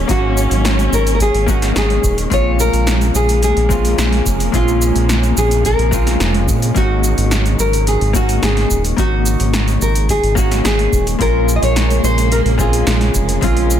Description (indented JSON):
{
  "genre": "sunset chillout",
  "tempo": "108 BPM",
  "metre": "4/4",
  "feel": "straight",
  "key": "unclear",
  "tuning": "A4 = 438 Hz",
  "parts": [
    { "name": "vintage hollow-body jazz guitar", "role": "accompaniment", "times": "0.0-13.8 s", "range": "Ab3 to Gb4", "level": "-21 LUFS", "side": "left 2 dB", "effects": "auto-pan" },
    { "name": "dark chamber string section", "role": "sustained chords", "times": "0.0-13.8 s", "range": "Db3 to Bb4", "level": "-23 LUFS", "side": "equal", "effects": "stereo widening" },
    { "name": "round analog bass", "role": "bass", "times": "0.0-13.8 s", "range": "Eb1 to Bb2", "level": "-16 LUFS", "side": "equal", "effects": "tube saturation" },
    { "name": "nylon-string guitar", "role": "melody", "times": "0.1-13.8 s", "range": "F4 to Eb5", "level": "-19 LUFS", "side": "left 1 dB", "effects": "digital delay" },
    { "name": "deep house drum kit", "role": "drums", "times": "0.1-13.8 s", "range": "cabasa, hi-hat, snare drum", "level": "-21 LUFS", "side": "equal", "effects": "overdrive" },
    { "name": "electronic kick drum", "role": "drums", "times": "0.1-13.5 s", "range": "none", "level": "-20 LUFS", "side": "equal", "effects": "overdrive" }
  ],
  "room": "light reverb",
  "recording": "dense, heavily limited modern master",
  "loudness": "-12 LUFS",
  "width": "side -10 dB against mid",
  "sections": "0.0-13.8 A section",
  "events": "none",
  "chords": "0.0 Ab7sus4; 2.3 Bbm7; 6.8 Ab7sus4; 11.2 Bbm7"
}